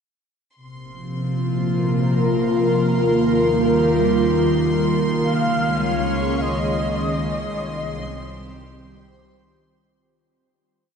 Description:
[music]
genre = ambient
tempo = 51 BPM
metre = 4/4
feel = straight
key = Bb dorian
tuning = A4 = 439 Hz
[part]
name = airy breathy pad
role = sustained chords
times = 0.6-9.9 s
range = C3 to Db5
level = -19 LUFS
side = equal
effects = chorus
[part]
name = clear studio double bass section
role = bass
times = 0.6-9.9 s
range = Bb1 to Eb2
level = -33 LUFS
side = equal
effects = none
[part]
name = overtone-sweeping drone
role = drone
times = 1.9-10.0 s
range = Bb3 to F4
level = -27 LUFS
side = equal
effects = chorus, built-in reverb
[part]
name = clear studio violin section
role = texture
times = 0.6-9.9 s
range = C6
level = -34 LUFS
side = right 1 dB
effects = none
[part]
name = breathy flute-like synth lead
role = melody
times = 5.2-9.3 s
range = Eb5 to F5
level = -26 LUFS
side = equal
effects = ensemble chorus, diffuse ambient delay
[sound]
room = wet huge ambient reverb, RT60 8.1 s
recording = nothing above 10.4 kHz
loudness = -18 LUFS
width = side -6 dB against mid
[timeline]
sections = 0.6-9.9 A section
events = fade-in on double bass section 0.6-9.9; fade-in on violin section 0.6-9.9; filter sweep on analog synth pad 0.6-9.9; fade-out 5.2-9.9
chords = 0.6 Bbsus2; 2.9 Ebadd9; 5.2 Dbsus2; 7.6 Cm

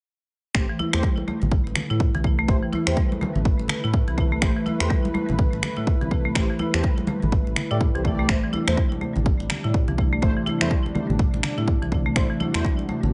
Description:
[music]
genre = afro house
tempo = 124 BPM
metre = 4/4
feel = swing 59% on 16ths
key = A dorian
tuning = A4 = 440 Hz
[part]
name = warm analog pad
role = sustained chords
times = 0.5-13.1 s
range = C3 to B4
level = -35 LUFS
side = equal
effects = chorus, sidechain pumping
[part]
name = mellow synth brass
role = stabs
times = 0.5-12.6 s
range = A3 to D5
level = -34 LUFS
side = equal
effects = chorus, phaser, sidechain pumping, digital delay
[part]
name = smooth synth bass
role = bass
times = 0.5-13.1 s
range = A1 to A2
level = -28 LUFS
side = equal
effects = sidechain pumping
[part]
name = electronic finger snaps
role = drums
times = 0.5-12.6 s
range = none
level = -29 LUFS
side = equal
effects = small room reverb
[part]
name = electronic kick drum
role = drums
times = 0.5-12.8 s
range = none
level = -24 LUFS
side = equal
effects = overdrive, small room reverb
[part]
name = marimba with hard mallets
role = arpeggios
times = 0.6-13.0 s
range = E3 to E4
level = -30 LUFS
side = equal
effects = sidechain pumping, digital delay
[part]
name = congas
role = percussion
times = 0.6-13.1 s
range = none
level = -33 LUFS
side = equal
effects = none
[sound]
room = digital ambience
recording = nothing above 10.3 kHz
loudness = -23 LUFS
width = mono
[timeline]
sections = 0.6-13.1 A section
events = none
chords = 0.6 Am7; 8.3 C6/A

